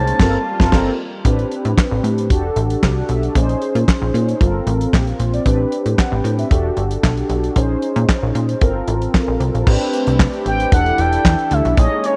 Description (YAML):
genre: early-eighties boogie funk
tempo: 114 BPM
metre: 4/4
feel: straight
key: unclear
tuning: A4 = 440 Hz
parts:
  - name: expressive synth lead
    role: melody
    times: 0.0-0.7, 10.5-12.2 s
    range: Db5 to A5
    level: -22 LUFS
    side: equal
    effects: chorus
  - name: mellow synth brass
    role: accompaniment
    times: 0.0-12.2 s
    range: C4 to G5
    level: -23 LUFS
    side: equal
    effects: chorus
  - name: warm analog pad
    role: sustained chords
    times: 0.0-1.2, 9.7-12.2 s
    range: E3 to A4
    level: -30 LUFS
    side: equal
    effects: subtle chorus
  - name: plucky analog bass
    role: bass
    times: 0.0-11.9 s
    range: E1 to Bb2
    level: -21 LUFS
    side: equal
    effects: none
  - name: damped 70s drum kit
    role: drums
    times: 0.1-12.2 s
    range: crash cymbal, handclaps, hi-hat, kick drum, snare drum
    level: -19 LUFS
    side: equal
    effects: none
room: small room ambience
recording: none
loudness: -17 LUFS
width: mono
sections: 0.0-1.2 A section; 1.2-9.7 B section; 9.7-12.2 A section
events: band accent 0.2-1.2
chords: 0.2 Gm11; 1.2 Am11; 2.3 Em11; 3.4 Bbm11; 4.4 Gm11; 5.5 Am11; 6.5 Em11; 7.6 Bbm11; 8.6 Gm11; 9.7 Am11; 10.7 Em7